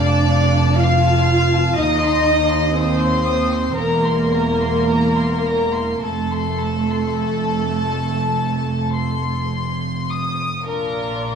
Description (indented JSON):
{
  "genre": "classical, slow romantic movement for string orchestra",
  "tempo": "51-62 BPM",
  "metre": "4/4",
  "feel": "rubato",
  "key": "unclear",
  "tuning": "A4 = 436 Hz",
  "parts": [
    { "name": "warm studio violin section", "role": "melody", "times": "0.0-11.4 s", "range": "Bb4 to Eb6", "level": "-26 LUFS", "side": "left 3 dB", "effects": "none" },
    { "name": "warm studio violin section", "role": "second line", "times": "0.0-11.4 s", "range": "D4 to F5", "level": "-21 LUFS", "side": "left 3 dB", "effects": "none" },
    { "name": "dark studio viola section", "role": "accompaniment", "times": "0.0-11.4 s", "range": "A3 to D5", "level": "-23 LUFS", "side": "right 2 dB", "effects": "none" },
    { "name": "dark studio double bass section", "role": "bass", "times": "0.0-11.4 s", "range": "E1 to Eb2", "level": "-22 LUFS", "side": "right 2 dB", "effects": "none" },
    { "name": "warm studio cello section", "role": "bass", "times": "0.0-11.4 s", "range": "Eb2 to Bb2", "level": "-24 LUFS", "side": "right 2 dB", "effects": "none" }
  ],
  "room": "wet scoring stage reverb, RT60 1.7 s",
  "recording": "faint mains hum",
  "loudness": "-16 LUFS",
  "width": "side -6 dB against mid",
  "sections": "0.0-10.7 A section",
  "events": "none",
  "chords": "0.0 Dm/F; 1.8 Cm/Eb; 3.8 C7/E; 6.0 F; 10.7 Bb"
}